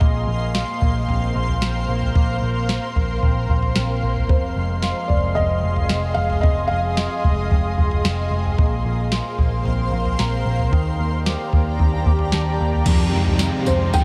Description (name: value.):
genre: dream pop.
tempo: 112 BPM.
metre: 4/4.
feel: straight.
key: F dorian.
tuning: A4 = 440 Hz.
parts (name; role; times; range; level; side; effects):
shimmering ambient pad; sustained chords; 0.0-14.0 s; G4 to C6; -30 LUFS; equal; chorus, built-in reverb.
electric guitar with an envelope filter; arpeggios; 0.0-14.0 s; F2 to G4; -30 LUFS; equal; analog chorus, tape echo.
vintage muted picked electric bass; bass; 0.0-14.0 s; F1 to F2; -24 LUFS; equal; none.
soft vintage rhythm box; drums; 0.0-14.0 s; crash cymbal, kick drum, snare drum, tambourine, toms; -23 LUFS; equal; overdrive.
celesta; texture; 2.7-3.7, 10.2-14.0 s; G5 to C6; -42 LUFS; equal; none.
felt-muted upright piano; melody; 4.3-8.3, 13.7-14.0 s; C5 to G5; -29 LUFS; equal; tape echo.
crunchy overdriven guitar; accompaniment; 12.9-14.0 s; F2 to F4; -26 LUFS; equal; tremolo, ensemble chorus.
room: moderate huge ambient reverb, RT60 7.8 s.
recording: dreamy mix soaked in reverb.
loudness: -20 LUFS.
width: mono.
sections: 0.0-12.9 A section; 12.9-14.0 B section.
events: none.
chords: 0.0 Bbsus2; 4.3 Fm7; 8.6 Bbsus2; 10.7 Ebmaj7; 12.9 Fm7.